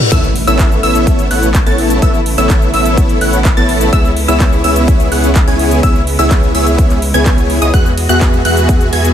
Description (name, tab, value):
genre	EDM, festival progressive house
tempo	126 BPM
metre	4/4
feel	straight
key	unclear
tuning	A4 = 440 Hz
part	big-room dance drum kit	drums	0.0-9.1 s	crash cymbal, handclaps, hi-hat, ride cymbal, shaker, toms	-21 LUFS	right 1 dB	none
part	reverse cymbal and impact	sound effects	0.0-2.0 s	none	-19 LUFS	left 2 dB	none
part	warm studio string section	sustained chords	0.1-9.1 s	C#3 to F#4	-20 LUFS	left 1 dB	sidechain pumping
part	wide unison pluck	arpeggios	0.1-9.1 s	D#6 to A6	-19 LUFS	equal	sidechain pumping, dub echo
part	dense compressed supersaw	riff	0.1-9.1 s	B3 to A5	-15 LUFS	equal	sidechain pumping, dub echo
part	saturated sub bass	bass	0.1-9.1 s	A1 to E2	-16 LUFS	equal	sidechain pumping
part	electronic kick drum	drums	0.1-8.8 s	none	-11 LUFS	equal	high-pass filter on kick
room	light reverb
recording	none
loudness	-9 LUFS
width	side -10 dB against mid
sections	0.1-9.1 A section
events	drop 0.1-9.1; impact 0.1-2.0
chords	0.1 Aadd9; 3.9 C#m7; 7.7 Eadd9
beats	| 0.12 0.59 1.07 1.55 | 2.02 2.50 2.98 3.45 | 3.93 4.40 4.88 5.36 | 5.83 6.31 6.78 7.26 | 7.74 8.21 8.69